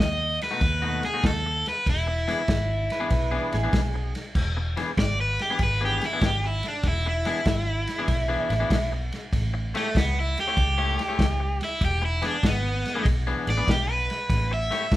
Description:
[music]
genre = electric blues shuffle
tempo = 96 BPM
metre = 4/4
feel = swing 67% on 8ths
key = E mixolydian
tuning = A4 = 438 Hz
[part]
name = cranked stack guitar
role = melody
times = 0.0-15.0 s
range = A3 to E5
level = -27 LUFS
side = equal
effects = overdrive
[part]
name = electric guitar at the edge of break-up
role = riff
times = 0.0-15.0 s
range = B2 to C#5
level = -31 LUFS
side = left 4 dB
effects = none
[part]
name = vintage muted fingered electric bass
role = bass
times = 0.0-15.0 s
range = E1 to D#2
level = -28 LUFS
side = equal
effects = none
[part]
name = warm soul drum kit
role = drums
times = 0.0-15.0 s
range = crash cymbal, kick drum, ride cymbal, snare drum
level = -27 LUFS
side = equal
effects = none
[part]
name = clean lap steel guitar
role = second line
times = 2.9-4.1 s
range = G#4 to B4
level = -34 LUFS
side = right 4 dB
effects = none
[sound]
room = light reverb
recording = band playing live in one room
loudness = -22 LUFS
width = side -15 dB against mid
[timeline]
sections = 0.0-4.4 A section; 4.4-15.0 B section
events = overdriven electric guitar solo 4.4-15.0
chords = 0.0 B7; 1.9 E7; 9.3 A7; 11.8 E7; 14.3 A7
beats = 0.61 1.23 | 1.86 2.48 3.10 3.73 | 4.35 4.97 5.60 6.22 | 6.84 7.46 8.09 8.71 | 9.33 9.95 10.57 11.19 | 11.81 12.44 13.06 13.68 | 14.30 14.92

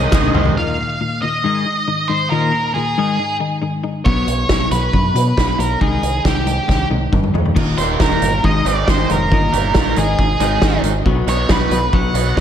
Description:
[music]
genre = indie rock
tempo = 137 BPM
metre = 4/4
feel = straight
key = unclear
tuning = A4 = 436 Hz
[part]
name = octave-fuzz lead guitar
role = melody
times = 0.0-12.3 s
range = G4 to F#5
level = -20 LUFS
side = right 1 dB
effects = distortion, analog delay
[part]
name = bright tonewheel organ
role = sustained chords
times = 0.0-0.5, 7.6-12.4 s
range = F#3 to Eb5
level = -32 LUFS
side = equal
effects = none
[part]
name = biting overdriven guitar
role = riff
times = 0.0-0.6, 7.8-12.4 s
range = Ab2 to F#4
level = -24 LUFS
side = right 9 dB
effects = wide subtle chorus, analog delay
[part]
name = twelve-string electric guitar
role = riff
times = 0.0-12.4 s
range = Eb2 to B3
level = -21 LUFS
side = left 4 dB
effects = spring reverb
[part]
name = growling fingered electric bass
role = bass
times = 0.0-0.5, 4.1-12.4 s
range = Eb1 to B2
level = -20 LUFS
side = equal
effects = overdrive
[part]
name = loose indie drum kit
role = drums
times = 0.1-0.6, 4.1-12.4 s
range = crash cymbal, hi-hat, kick drum, snare drum, toms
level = -18 LUFS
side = right 1 dB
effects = none
[sound]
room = moderate plate reverb, RT60 1.8 s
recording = dreamy mix soaked in reverb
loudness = -14 LUFS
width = side -9 dB against mid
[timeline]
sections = 0.6-7.6 A section; 7.6-12.4 B section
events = drum fill 0.1-0.6, 6.7-7.6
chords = 0.0 Ab/C; 0.6 Ebsus2; 1.4 Ab5; 2.3 Eb5; 3.0 Ab5; 4.1 B5; 5.8 Ab/C; 7.6 Ebadd9; 8.4 Ab; 9.3 Ebadd9/G; 10.0 Ab; 11.1 B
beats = 0.12 | 0.56 1.00 1.43 1.87 | 2.31 2.75 3.19 3.62 | 4.06 4.50 4.94 5.38 | 5.81 6.25 6.69 7.13 | 7.56 8.00 8.44 8.88 | 9.31 9.75 10.19 10.62 | 11.06 11.50 11.94 12.37

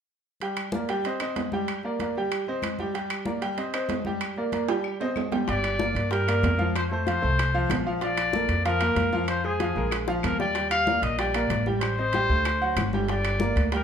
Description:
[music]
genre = latin, salsa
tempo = 189 BPM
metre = 4/4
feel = straight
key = G minor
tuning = A4 = 440 Hz
[part]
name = bright grand piano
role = accompaniment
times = 0.4-13.8 s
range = F3 to G5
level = -28 LUFS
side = right 1 dB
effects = none
[part]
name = congas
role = percussion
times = 0.4-13.8 s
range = none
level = -35 LUFS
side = left 3 dB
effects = none
[part]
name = timbales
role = percussion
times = 0.4-13.8 s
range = none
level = -33 LUFS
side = right 6 dB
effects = none
[part]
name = claves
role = percussion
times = 0.6-13.4 s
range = none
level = -40 LUFS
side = left 6 dB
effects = none
[part]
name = clear trumpet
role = melody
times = 5.5-13.8 s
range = Ab4 to F5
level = -27 LUFS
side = left 3 dB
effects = none
[part]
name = upright bass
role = bass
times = 5.5-13.8 s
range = G1 to G2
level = -28 LUFS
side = equal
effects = none
[part]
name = bongos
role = percussion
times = 5.5-13.8 s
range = none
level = -35 LUFS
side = left 5 dB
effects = none
[sound]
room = moderate large studio reverb, RT60 0.8 s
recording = band playing live in one room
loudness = -23 LUFS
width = side -8 dB against mid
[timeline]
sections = 0.4-5.5 A section; 5.5-13.8 B section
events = drum fill 4.7-5.5, 10.1-10.6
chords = 0.4 Gm; 1.0 Cm; 1.7 Gm; 2.3 Cm; 2.9 Gm; 3.6 Cm; 4.2 Gm; 4.8 Cm; 5.5 Gm7; 6.7 F; 8.0 Bbmaj7; 9.3 Fm; 9.9 Bb5; 10.6 Ebmaj7; 11.8 Am7b5; 12.5 D7; 13.1 Gm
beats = | 0.41 0.73 1.04 1.36 | 1.68 2.00 2.31 2.63 | 2.95 3.26 3.58 3.90 | 4.21 4.53 4.85 5.16 | 5.48 5.80 6.12 6.43 | 6.75 7.07 7.38 7.70 | 8.02 8.33 8.65 8.97 | 9.28 9.60 9.92 10.23 | 10.55 10.87 11.19 11.50 | 11.82 12.13 12.45 12.77 | 13.09 13.40 13.72

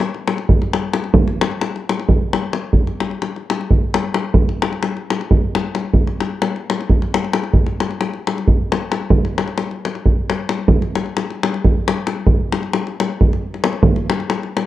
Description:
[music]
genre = balkan folk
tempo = 265 BPM (eighths)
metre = 7/8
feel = straight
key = none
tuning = none
[part]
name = davul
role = percussion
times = 0.0-14.7 s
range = none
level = -16 LUFS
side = equal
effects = none
[sound]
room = studio reverb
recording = dry, close 1970s-style studio recording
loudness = -16 LUFS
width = side -14 dB against mid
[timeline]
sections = 0.0-7.5 A section; 7.5-14.7 A section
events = none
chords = none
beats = 0.20 0.43 0.66 0.90 | 1.12 1.35 1.58 1.81 2.04 2.27 2.50 | 2.73 2.96 3.19 3.42 3.65 3.88 4.11 | 4.34 4.56 4.79 5.02 5.25 5.48 5.71 | 5.93 6.16 6.39 6.61 6.84 7.07 7.29 | 7.52 7.75 7.97 8.20 8.43 8.65 8.88 | 9.11 9.33 9.56 9.78 10.01 10.23 10.46 | 10.68 10.91 11.13 11.36 11.58 11.81 12.03 | 12.26 12.48 12.71 12.93 13.15 13.38 13.60 | 13.83 14.05 14.28 14.50

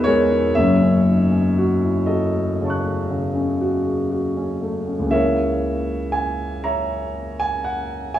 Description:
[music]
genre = classical, impressionist solo piano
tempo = 40 BPM (dotted quarters)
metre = 9/8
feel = rubato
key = unclear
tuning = A4 = 441 Hz
[part]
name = warm concert grand piano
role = solo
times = 0.0-8.2 s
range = E1 to F#6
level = -18 LUFS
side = equal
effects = none
[sound]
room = wet concert hall reverb, RT60 2.0 s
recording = small room ambience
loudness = -18 LUFS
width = side -12 dB against mid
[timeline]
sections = 0.0-5.1 A section; 5.1-8.2 B section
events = none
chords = 0.0 Emaj7; 0.5 F#m6; 5.1 C#m6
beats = | 0.55 2.08 3.61 | 5.12 6.65 8.16

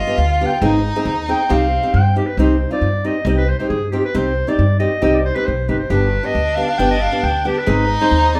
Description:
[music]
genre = klezmer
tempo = 136 BPM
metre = 2/4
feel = straight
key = C harmonic minor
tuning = A4 = 440 Hz
[part]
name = clear clarinet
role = melody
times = 0.0-8.4 s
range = F4 to G5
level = -22 LUFS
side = equal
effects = none
[part]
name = clear violin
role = second line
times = 0.0-2.2, 5.9-8.4 s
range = C4 to F4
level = -24 LUFS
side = equal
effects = none
[part]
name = nylon-string guitar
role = accompaniment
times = 0.1-8.4 s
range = B3 to Ab4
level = -22 LUFS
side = equal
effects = none
[part]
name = upright bass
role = bass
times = 0.2-8.4 s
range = G1 to G2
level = -21 LUFS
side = equal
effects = none
[sound]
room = wet studio reverb, RT60 0.9 s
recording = band playing live in one room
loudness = -17 LUFS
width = mono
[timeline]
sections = 0.0-2.4 A section; 2.4-8.4 B section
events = clarinet solo 0.0-2.4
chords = 0.0 G; 0.6 Ab; 1.5 Cm; 5.9 G; 7.7 Ab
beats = 0.18 | 0.62 1.06 | 1.50 1.94 | 2.38 2.82 | 3.26 3.70 | 4.14 4.58 | 5.03 5.47 | 5.91 6.35 | 6.79 7.23 | 7.67 8.12

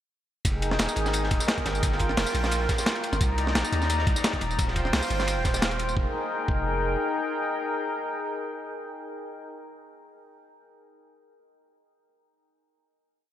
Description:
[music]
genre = liquid drum and bass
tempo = 174 BPM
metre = 4/4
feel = swing 53% on 16ths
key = F dorian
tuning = A4 = 440 Hz
[part]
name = warm analog pad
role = sustained chords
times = 0.4-9.5 s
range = Eb4 to Bb5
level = -29 LUFS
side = left 1 dB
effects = chorus, sidechain pumping
[part]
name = long sustained 808-style bass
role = bass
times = 0.4-7.0 s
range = Eb1 to Eb2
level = -29 LUFS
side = equal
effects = none
[part]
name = electronic kick drum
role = drums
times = 0.4-6.6 s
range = none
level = -27 LUFS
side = equal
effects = none
[part]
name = breakbeat sampler-style drum kit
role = drums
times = 0.5-6.0 s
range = hi-hat, snare drum, tambourine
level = -29 LUFS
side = equal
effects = none
[part]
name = crunchy breakbeat drum kit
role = drums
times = 0.5-5.9 s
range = hi-hat, ride cymbal, snare drum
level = -34 LUFS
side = equal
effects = high-pass filter on cymbals, high-pass filter on hats, high-pass filter on snare, high-pass filter on room
[sound]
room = moderate cathedral reverb, RT60 5.4 s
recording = dreamy mix soaked in reverb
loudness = -24 LUFS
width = side -11 dB against mid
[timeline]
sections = 0.4-6.0 drop; 6.0-8.7 final chord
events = drop 0.4-6.0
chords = 0.4 Fm11; 1.8 Gm7; 3.2 Cm9; 4.6 Eb69; 6.0 Fm11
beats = | 0.45 0.79 1.14 1.48 | 1.83 2.17 2.52 2.86 | 3.21 3.55 3.90 4.24 | 4.59 4.93 5.28 5.62 | 5.97 6.31 6.66 7.00 | 7.35 7.69 8.04 8.38

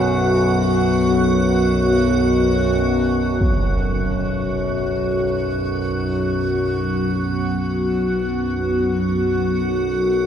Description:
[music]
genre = dark ambient drone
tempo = free time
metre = none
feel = none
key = unclear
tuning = A4 = 441 Hz
[part]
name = sweeping resonant pad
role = sustained chords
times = 0.0-10.3 s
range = F#3 to F#4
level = -21 LUFS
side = equal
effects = chorus
[part]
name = tubular bells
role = arpeggios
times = 0.0-7.3 s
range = F#4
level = -38 LUFS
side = right 2 dB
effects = none
[part]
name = overtone-sweeping drone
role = drone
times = 0.0-10.3 s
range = B1 to F#2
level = -21 LUFS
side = equal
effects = chorus, built-in reverb
[part]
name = icy glass pad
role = texture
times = 0.0-10.3 s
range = F#4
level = -25 LUFS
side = equal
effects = chorus, built-in reverb
[part]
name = impact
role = percussion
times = 3.4-3.7 s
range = none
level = -24 LUFS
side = equal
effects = low-pass filter on sfx
[sound]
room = wet cathedral reverb, RT60 5.2 s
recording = in a vast, echoing space, cassette tape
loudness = -17 LUFS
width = side -8 dB against mid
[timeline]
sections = 0.0-3.4 A section; 3.4-10.3 B section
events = none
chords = 0.0 B5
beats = free time

